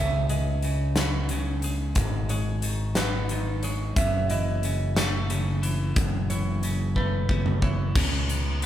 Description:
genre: post-rock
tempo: 60 BPM (dotted quarters)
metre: 6/8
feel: straight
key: F# dorian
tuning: A4 = 444 Hz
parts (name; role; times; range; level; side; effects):
- mellow electric guitar; arpeggios; 0.0-8.0 s; B4 to E5; -33 LUFS; right 3 dB; spring reverb
- twelve-string electric guitar; arpeggios; 0.0-8.7 s; F#2 to B3; -30 LUFS; left 1 dB; none
- growling fingered electric bass; bass; 0.0-8.7 s; F#1 to C#2; -27 LUFS; equal; overdrive
- huge arena drum kit; drums; 0.3-8.7 s; crash cymbal, hi-hat, kick drum, snare drum, toms; -27 LUFS; equal; none
room: moderate large studio reverb, RT60 0.9 s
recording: band playing live in one room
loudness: -23 LUFS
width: side -11 dB against mid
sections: 0.0-8.0 A section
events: drum fill 7.0-8.0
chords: 0.0 C#m7; 2.0 G#m; 4.0 F#m7; 8.0 N.C.

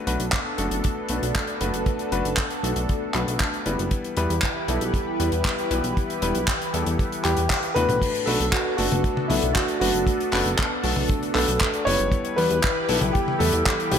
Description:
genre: italo disco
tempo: 117 BPM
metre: 4/4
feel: straight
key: B minor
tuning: A4 = 439 Hz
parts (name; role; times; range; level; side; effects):
- lush unison pad; sustained chords; 0.0-14.0 s; E3 to B4; -29 LUFS; equal; chorus, phaser
- warm electric grand piano; stabs; 0.0-14.0 s; G3 to B4; -29 LUFS; left 3 dB; ping-pong delay
- chorused synth bass; bass; 0.1-14.0 s; E1 to E2; -26 LUFS; equal; none
- damped 70s drum kit; drums; 0.1-14.0 s; crash cymbal, handclaps, hi-hat, toms; -26 LUFS; left 1 dB; studio reverb, gated reverb
- kick drum; drums; 0.3-13.8 s; none; -25 LUFS; equal; studio reverb
- dark concert grand piano; melody; 7.2-14.0 s; E4 to C#5; -25 LUFS; equal; ping-pong delay
room: light reverb, small room reverb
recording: none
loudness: -21 LUFS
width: side -8 dB against mid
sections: 0.0-8.0 A section; 8.0-14.0 B section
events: band accent 7.5; drum fill 7.8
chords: 0.0 Bm7; 3.9 Em; 8.0 Bm7; 12.1 Em

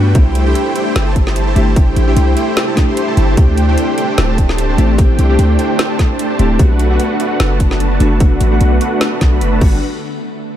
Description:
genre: future bass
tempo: 149 BPM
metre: 4/4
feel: swing 55% on 16ths, half-time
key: unclear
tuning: A4 = 440 Hz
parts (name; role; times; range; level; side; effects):
- glassy digital keys; accompaniment; 0.0-9.8 s; A3 to G4; -20 LUFS; left 2 dB; chorus, sidechain pumping, ping-pong delay
- shimmering ambient pad; sustained chords; 0.1-9.8 s; C3 to B4; -24 LUFS; equal; chorus, built-in reverb, sidechain pumping
- supersaw chords; riff; 0.0-9.8 s; G3 to C6; -18 LUFS; right 1 dB; sidechain pumping, low-pass filter, ping-pong delay
- warm 808-style bass; bass; 0.0-9.8 s; D1 to G2; -13 LUFS; equal; sidechain pumping
- trap drum kit; drums; 0.1-9.7 s; crash cymbal, hi-hat, snare drum; -22 LUFS; equal; studio reverb
- electronic kick drum; drums; 0.2-9.7 s; none; -11 LUFS; equal; studio reverb
room: little or no reverb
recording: none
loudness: -11 LUFS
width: side -11 dB against mid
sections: 0.0-9.8 A section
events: filter sweep on 808-style bass 0.0-9.8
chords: 0.2 C6; 3.4 D7sus4; 6.6 Bm7; 9.6 Gmaj7; 9.8 N.C.

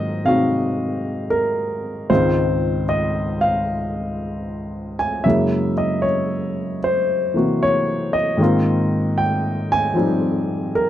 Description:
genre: jazz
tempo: 76 BPM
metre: 4/4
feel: swing 67% on 8ths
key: Ab major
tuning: A4 = 439 Hz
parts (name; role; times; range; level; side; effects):
- warm baby grand piano; accompaniment; 0.0-10.9 s; Db2 to Ab5; -18 LUFS; equal; none
room: light reverb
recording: dry, close 1970s-style studio recording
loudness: -18 LUFS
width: side -12 dB against mid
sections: 0.0-10.9 A section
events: none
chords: 0.0 Ab13; 2.1 Dbmaj9; 5.2 Gb9; 8.4 Ab69

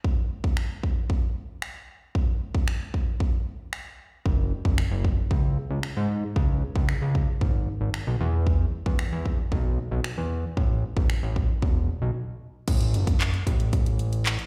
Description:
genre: dance-pop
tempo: 114 BPM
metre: 4/4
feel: straight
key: F# minor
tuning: A4 = 440 Hz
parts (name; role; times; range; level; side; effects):
- pop drum kit; drums; 0.0-14.5 s; crash cymbal, finger snaps, handclaps, hi-hat, kick drum; -27 LUFS; equal; none
- fat analog bass; bass; 4.3-14.4 s; E1 to G#2; -28 LUFS; equal; sidechain pumping
room: little or no reverb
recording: live gig heard through the venue's PA, recital hall reverb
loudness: -26 LUFS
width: mono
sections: 0.0-12.7 A section; 12.7-14.5 B section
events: break 12.2-12.7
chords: none

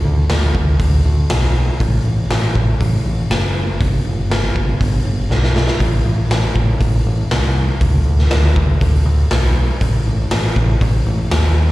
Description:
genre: quiet-loud alternative rock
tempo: 120 BPM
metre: 4/4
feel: straight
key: unclear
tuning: A4 = 440 Hz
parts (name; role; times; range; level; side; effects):
- overdriven picked electric bass; bass; 0.0-11.7 s; F#1 to D#2; -15 LUFS; equal; none
- raw garage drum kit; drums; 0.3-11.7 s; hi-hat, kick drum, snare drum; -18 LUFS; equal; none
room: little or no reverb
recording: live gig heard through the venue's PA, recital hall reverb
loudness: -13 LUFS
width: side -17 dB against mid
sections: 0.0-11.7 A section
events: drum fill 5.3-5.8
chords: none

